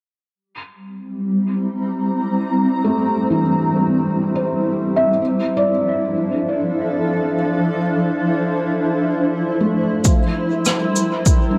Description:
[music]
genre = ambient dub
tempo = free time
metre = none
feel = none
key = unclear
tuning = A4 = 436 Hz
[part]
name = granular cloud pad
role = sustained chords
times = 0.9-11.6 s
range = F3 to Bb5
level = -21 LUFS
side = equal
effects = built-in reverb
[part]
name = felt-muted upright piano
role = arpeggios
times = 2.8-11.6 s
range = E3 to E5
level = -24 LUFS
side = equal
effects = low-pass filter, dub echo
[part]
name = cabasa and rim click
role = drums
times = 10.0-11.4 s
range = none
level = -24 LUFS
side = equal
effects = dub echo
[part]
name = electronic kick drum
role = drums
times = 10.1-11.4 s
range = none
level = -17 LUFS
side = equal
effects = overdrive
[sound]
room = moderate spring reverb, RT60 2.6 s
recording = none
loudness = -19 LUFS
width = mono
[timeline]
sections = 0.4-11.6 A section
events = filter sweep on felt piano 0.4-11.6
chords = 0.4 C7; 5.2 Dm9; 10.1 C7

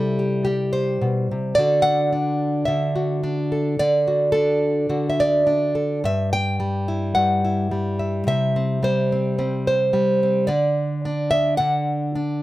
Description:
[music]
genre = folk, solo fingerstyle acoustic guitar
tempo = 108 BPM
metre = 4/4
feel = straight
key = unclear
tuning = A4 = 440 Hz
[part]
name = nylon-string guitar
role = solo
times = 0.0-12.4 s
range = G2 to G5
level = -19 LUFS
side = equal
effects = none
[sound]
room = light reverb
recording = close, detailed microphones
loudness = -19 LUFS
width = side -16 dB against mid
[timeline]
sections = 0.0-12.4 A section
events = none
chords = 0.0 C; 1.6 D; 6.0 C; 10.5 D

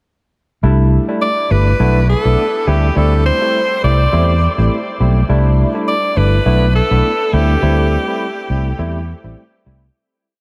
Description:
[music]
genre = afrobeats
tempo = 103 BPM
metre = 4/4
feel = swing 55% on 16ths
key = unclear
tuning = A4 = 441 Hz
[part]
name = barky tine electric piano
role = accompaniment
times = 0.6-9.9 s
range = G3 to E4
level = -22 LUFS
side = equal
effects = lush chorus
[part]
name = fingered electric bass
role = bass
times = 0.6-9.9 s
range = G1 to E2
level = -15 LUFS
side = equal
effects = none
[part]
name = bright alto saxophone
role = melody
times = 1.2-9.4 s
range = G4 to D5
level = -20 LUFS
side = equal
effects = analog delay
[sound]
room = moderate huge ambient reverb, RT60 7.5 s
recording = dreamy mix soaked in reverb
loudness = -14 LUFS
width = mono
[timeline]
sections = 0.6-10.0 chorus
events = fade-out 7.6-10.0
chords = 0.6 C69; 1.8 Bm7; 2.7 D9sus4; 5.3 C69; 6.5 Bm7; 7.3 D9sus4

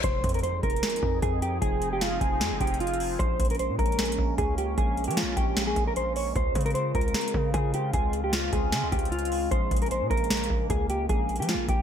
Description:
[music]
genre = hip hop, trap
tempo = 152 BPM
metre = 4/4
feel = half-time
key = F minor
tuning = A4 = 440 Hz
[part]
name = mellow electric guitar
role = melody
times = 0.0-11.8 s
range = F4 to Db5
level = -28 LUFS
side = equal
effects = analog chorus, low-pass filter, digital delay
[part]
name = sweeping resonant pad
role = sustained chords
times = 0.0-11.8 s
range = Db3 to Ab4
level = -34 LUFS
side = equal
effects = chorus
[part]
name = hard-hitting 808-style bass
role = bass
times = 0.0-11.8 s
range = F1 to F3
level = -31 LUFS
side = equal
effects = none
[part]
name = booming analog drum machine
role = drums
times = 0.0-11.8 s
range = hi-hat, kick drum, snare drum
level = -28 LUFS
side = equal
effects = overdrive, gated reverb
[part]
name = reverse cymbal and impact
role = sound effects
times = 0.0-1.6 s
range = none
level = -38 LUFS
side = left 3 dB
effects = none
[sound]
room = light reverb, digital ambience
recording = bright 1980s-style digital production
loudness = -24 LUFS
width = side -8 dB against mid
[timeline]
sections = 0.0-11.8 A section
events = impact 0.0-1.6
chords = 0.0 Fm7; 3.2 Bbm7; 6.4 Dbmaj7; 9.5 Bbm7

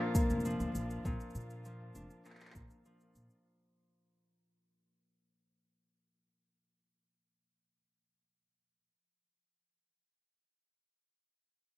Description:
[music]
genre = folktronica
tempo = 100 BPM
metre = 4/4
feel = straight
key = Bb major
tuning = A4 = 440 Hz
[part]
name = dark string quartet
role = sustained chords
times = 0.0-3.4 s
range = D4 to F5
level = -44 LUFS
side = right 1 dB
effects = low-pass filter
[part]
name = Celtic harp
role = arpeggios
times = 0.0-9.4 s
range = Bb2 to D4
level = -38 LUFS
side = left 1 dB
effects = vintage 12-bit sampler grit
[part]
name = electronic kick drum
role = drums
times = 0.1-2.7 s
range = none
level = -34 LUFS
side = equal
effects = none
[part]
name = electronic shaker and handclaps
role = drums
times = 0.2-3.4 s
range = none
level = -50 LUFS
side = right 1 dB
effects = none
[part]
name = upright bass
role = bass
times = 0.3-3.3 s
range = F1 to Bb2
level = -42 LUFS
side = equal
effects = none
[sound]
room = light reverb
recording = rough home demo mix, vinyl crackle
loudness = -34 LUFS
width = side -17 dB against mid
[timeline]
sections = 0.0-3.5 A section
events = fade-out 0.0-3.5; filter sweep on upright bass 0.0-3.5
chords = 0.0 Bb

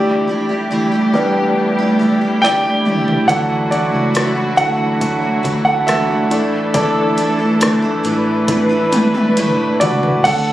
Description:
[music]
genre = pop ballad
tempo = 69 BPM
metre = 4/4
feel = straight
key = unclear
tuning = A4 = 440 Hz
[part]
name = clear concert grand piano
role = accompaniment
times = 0.0-10.5 s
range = E3 to G5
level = -16 LUFS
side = equal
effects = none
[part]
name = muted studio string section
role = sustained chords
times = 0.0-10.5 s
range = E3 to F#5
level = -20 LUFS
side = equal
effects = none
[part]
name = picked steel-string acoustic guitar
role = arpeggios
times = 0.0-10.5 s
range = A2 to A4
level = -20 LUFS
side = right 2 dB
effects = none
[part]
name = deep house drum kit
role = drums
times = 2.4-10.5 s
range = crash cymbal, hi-hat, kick drum, rim click, snare drum, toms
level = -20 LUFS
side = equal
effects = none
[part]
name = vintage muted fingered electric bass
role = bass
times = 3.3-10.5 s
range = A1 to D2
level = -25 LUFS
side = equal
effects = none
[sound]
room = moderate concert hall reverb, RT60 2.1 s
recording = recorded on a phone in the room, studio reverb, compression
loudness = -13 LUFS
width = side -14 dB against mid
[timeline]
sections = 0.0-10.3 A section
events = grand piano solo 0.0-10.3; drum fill 2.4-3.3, 8.5-10.3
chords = 0.0 A7sus4/D; 3.3 Dadd9; 6.3 Asus4

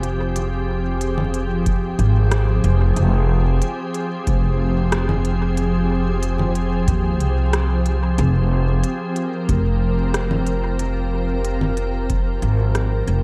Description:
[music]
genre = ambient dub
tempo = 92 BPM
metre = 4/4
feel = straight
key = F minor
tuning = A4 = 440 Hz
[part]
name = soft additive organ-like pad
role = sustained chords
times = 0.0-13.2 s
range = F3 to Bb4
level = -25 LUFS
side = equal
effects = ensemble chorus, built-in reverb
[part]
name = upright bass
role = bass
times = 0.0-13.2 s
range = F1 to Eb2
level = -22 LUFS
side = equal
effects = none
[part]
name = organic electronic drum kit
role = drums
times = 0.0-13.2 s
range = congas, hi-hat, rim click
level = -29 LUFS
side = equal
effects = dub echo
[part]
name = electronic kick drum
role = drums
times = 1.7-12.2 s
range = none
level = -26 LUFS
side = equal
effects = none
[sound]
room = light reverb, digital ambience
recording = vinyl crackle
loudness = -20 LUFS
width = mono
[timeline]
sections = 0.0-13.2 A section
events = fade-out 11.7-13.2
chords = 0.0 Fm

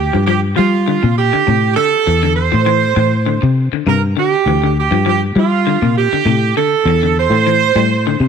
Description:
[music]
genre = afrobeat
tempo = 100 BPM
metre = 4/4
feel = straight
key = G dorian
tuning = A4 = 441 Hz
[part]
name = warm horn section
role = melody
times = 0.0-8.3 s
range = F4 to C5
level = -15 LUFS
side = right 9 dB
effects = none
[part]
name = fingered electric bass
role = bass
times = 0.0-8.3 s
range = D2 to G3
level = -15 LUFS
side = left 1 dB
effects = none
[part]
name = semi-hollow electric guitar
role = arpeggios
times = 0.1-8.3 s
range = C3 to G3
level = -19 LUFS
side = left 14 dB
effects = none
[sound]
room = light reverb, studio reverb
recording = 1960s-style stereo with parts hard left and right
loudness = -11 LUFS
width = side -7 dB against mid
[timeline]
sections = 0.0-8.3 A section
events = none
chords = 0.0 Gm7; 1.5 Am; 3.9 G7(no3); 6.3 Am

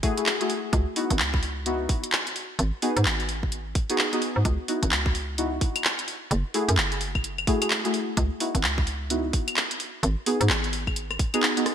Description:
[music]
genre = UK garage, two-step garage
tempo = 129 BPM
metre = 4/4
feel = swing 62% on 16ths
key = C# minor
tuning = A4 = 440 Hz
[part]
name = deep mellow chord stab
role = stabs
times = 0.0-11.6 s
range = A3 to G#4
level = -28 LUFS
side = left 1 dB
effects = chorus, vintage 12-bit sampler grit, ping-pong delay
[part]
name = electronic kick drum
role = drums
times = 0.0-11.3 s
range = none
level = -26 LUFS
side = equal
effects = none
[part]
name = garage drum kit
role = drums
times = 0.0-11.7 s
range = claves, handclaps, hi-hat, rim click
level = -26 LUFS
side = equal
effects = gated reverb
[part]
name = hollow knocking FM bass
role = bass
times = 0.7-11.2 s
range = F#1 to G#2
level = -27 LUFS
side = equal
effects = none
[sound]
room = moderate lush hall reverb, RT60 1.8 s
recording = bright 1980s-style digital production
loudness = -23 LUFS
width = side -9 dB against mid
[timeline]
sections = 0.0-11.7 A section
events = kick drops out 11.4-11.7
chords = 0.0 F#m9; 0.7 C#m11; 2.6 G#m7; 4.5 C#m11; 6.3 F#m9; 8.2 C#m11; 10.0 G#m7

